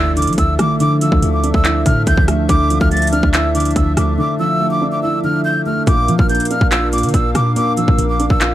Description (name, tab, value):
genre	hip hop, trap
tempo	142 BPM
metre	4/4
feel	half-time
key	D minor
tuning	A4 = 442 Hz
part	breathy jazz flute	melody	0.0-8.5 s	D6 to A6	-19 LUFS	right 1 dB	ping-pong delay
part	dark concert grand piano	accompaniment	0.0-8.5 s	Bb2 to F4	-19 LUFS	equal	none
part	hollow soft pad	sustained chords	0.0-8.5 s	F3 to F5	-23 LUFS	right 1 dB	chorus
part	clean 808-style bass	bass	0.0-8.5 s	Bb1 to F3	-18 LUFS	equal	none
part	impact	sound effects	0.0-0.8 s	none	-32 LUFS	equal	none
part	trap drum kit	drums	0.2-8.5 s	handclaps, hi-hat, kick drum, rim click	-17 LUFS	equal	overdrive
room	little or no reverb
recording	vinyl crackle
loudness	-13 LUFS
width	side -13 dB against mid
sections	0.0-8.5 A section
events	impact 0.0-0.8; break 4.2-5.9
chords	0.0 Dmadd9; 5.9 Bb